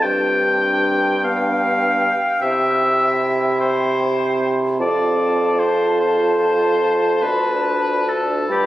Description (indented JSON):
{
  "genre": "classical, slow romantic movement for wind quintet",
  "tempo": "50 BPM (dotted quarters)",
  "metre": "12/8",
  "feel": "rubato",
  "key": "C major",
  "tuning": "A4 = 440 Hz",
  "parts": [
    { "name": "concert flute", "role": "melody", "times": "0.0-8.7 s", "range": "G5 to B5", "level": "-26 LUFS", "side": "left 3 dB", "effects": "none" },
    { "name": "clear oboe", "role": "second line", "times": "0.0-8.7 s", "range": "G4 to G5", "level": "-20 LUFS", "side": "left 1 dB", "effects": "none" },
    { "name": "bright clarinet", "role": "accompaniment", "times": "0.0-8.7 s", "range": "D4 to F4", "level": "-30 LUFS", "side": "right 5 dB", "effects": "none" },
    { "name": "mellow French horn", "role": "accompaniment", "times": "0.0-8.7 s", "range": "B3 to D4", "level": "-30 LUFS", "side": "equal", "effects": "none" },
    { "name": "warm bassoon", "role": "bass", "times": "0.0-8.7 s", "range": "D2 to C3", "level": "-19 LUFS", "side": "right 1 dB", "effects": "none" }
  ],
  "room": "moderate concert hall reverb, RT60 1.9 s",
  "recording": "recorded on a phone in the room, studio reverb, compression",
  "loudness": "-16 LUFS",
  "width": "side -14 dB against mid",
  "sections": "0.0-8.7 A section",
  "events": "none",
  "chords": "0.0 G; 2.4 C; 4.8 F; 7.2 Dm"
}